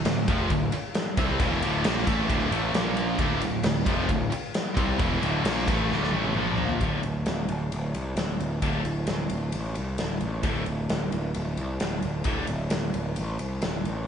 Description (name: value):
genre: hard rock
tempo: 132 BPM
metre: 4/4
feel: straight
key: D minor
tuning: A4 = 441 Hz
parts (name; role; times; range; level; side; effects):
- heavy high-gain guitar; riff; 0.0-6.8 s; D2 to C4; -31 LUFS; right 2 dB; distortion
- high-gain distorted guitar; riff; 0.0-12.4 s; D2 to C4; -32 LUFS; right 6 dB; distortion
- fuzz picked electric bass; bass; 0.0-14.0 s; D1 to C2; -29 LUFS; equal; overdrive
- cranked stack guitar; riff; 0.1-12.4 s; D2 to C4; -32 LUFS; left 8 dB; overdrive
- big rock drum kit; drums; 0.1-14.0 s; kick drum, ride cymbal, snare drum, toms; -28 LUFS; equal; none
room: moderate large studio reverb, RT60 1.2 s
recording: band playing live in one room, nothing above 10.3 kHz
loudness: -24 LUFS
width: side -8 dB against mid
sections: 0.0-6.8 A section; 6.8-14.1 B section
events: drum fill 5.9-6.8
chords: 0.0 Dm; 2.7 Bb5; 3.2 Dm; 6.4 Bb5; 6.8 D5